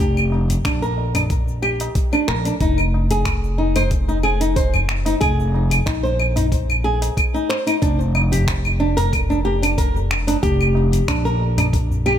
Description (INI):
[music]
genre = organic downtempo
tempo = 92 BPM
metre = 4/4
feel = swing 53% on 16ths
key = unclear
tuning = A4 = 443 Hz
[part]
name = flamenco guitar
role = arpeggios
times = 0.0-12.2 s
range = D4 to C5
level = -22 LUFS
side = equal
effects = ping-pong delay
[part]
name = upright bass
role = bass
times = 0.0-12.2 s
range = F1 to Bb1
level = -20 LUFS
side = equal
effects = tube saturation, sidechain pumping
[part]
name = deep house drum kit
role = drums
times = 0.0-12.2 s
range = cabasa, claves, finger snaps, hi-hat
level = -24 LUFS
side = right 1 dB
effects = overdrive
[part]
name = electronic kick drum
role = drums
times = 0.0-11.9 s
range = none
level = -22 LUFS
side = equal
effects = none
[part]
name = tabla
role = percussion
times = 0.3-12.0 s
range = none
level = -28 LUFS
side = left 1 dB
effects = none
[sound]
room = light reverb, studio ambience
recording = none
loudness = -16 LUFS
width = side -10 dB against mid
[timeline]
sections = 0.0-12.2 A section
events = none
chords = 0.0 Gm7/F; 2.6 Fm7; 7.8 Gm7/F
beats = | 0.00 0.65 1.30 1.95 | 2.61 3.26 3.91 4.56 | 5.21 5.87 6.52 7.17 | 7.82 8.48 9.13 9.78 | 10.43 11.09 11.74